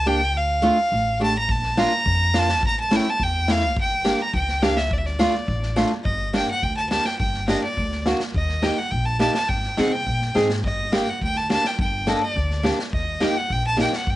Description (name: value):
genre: klezmer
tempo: 105 BPM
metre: 2/4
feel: straight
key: D harmonic minor, G harmonic minor from 6.1 s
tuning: A4 = 439 Hz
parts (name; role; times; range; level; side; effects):
- bright violin; melody; 0.0-14.2 s; D5 to Bb5; -24 LUFS; equal; cassette tape
- upright bass; bass; 0.0-14.2 s; G1 to C3; -26 LUFS; equal; none
- nylon-string guitar; accompaniment; 0.1-13.9 s; A3 to A4; -21 LUFS; equal; cassette tape
- street-band drum kit; drums; 1.5-14.2 s; kick drum, snare drum; -27 LUFS; equal; cassette tape
room: studio ambience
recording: home recording on cassette, nothing above 10.8 kHz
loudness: -19 LUFS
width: side -15 dB against mid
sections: 0.0-6.1 A section; 6.1-14.2 B section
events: none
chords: 0.3 Dm; 1.5 Bb; 2.6 A; 3.8 Gm; 4.9 Dm; 6.1 Gm; 8.3 Eb; 9.5 Ab; 10.6 Gm; 12.9 Eb